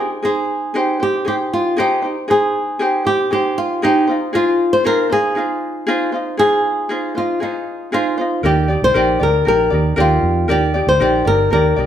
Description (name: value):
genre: acoustic pop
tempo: 117 BPM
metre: 4/4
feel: straight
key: Eb major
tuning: A4 = 436 Hz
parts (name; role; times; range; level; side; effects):
- flamenco guitar; melody; 0.0-11.9 s; Eb4 to C5; -17 LUFS; left 1 dB; none
- ukulele; accompaniment; 0.0-11.9 s; Eb4 to D5; -19 LUFS; equal; none
- vintage muted fingered electric bass; bass; 8.4-11.9 s; G1 to F2; -18 LUFS; right 1 dB; none
room: moderate large studio reverb, RT60 1.0 s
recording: band playing live in one room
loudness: -14 LUFS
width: side -10 dB against mid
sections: 0.0-8.4 A section; 8.4-11.9 B section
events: none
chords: 0.0 Abmaj7; 4.1 Fm7; 8.4 Ebmaj7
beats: | 0.23 0.75 1.26 1.77 | 2.29 2.80 3.31 3.82 | 4.34 4.85 5.36 5.88 | 6.39 6.90 7.41 7.93 | 8.44 8.95 9.46 9.98 | 10.49 11.00 11.52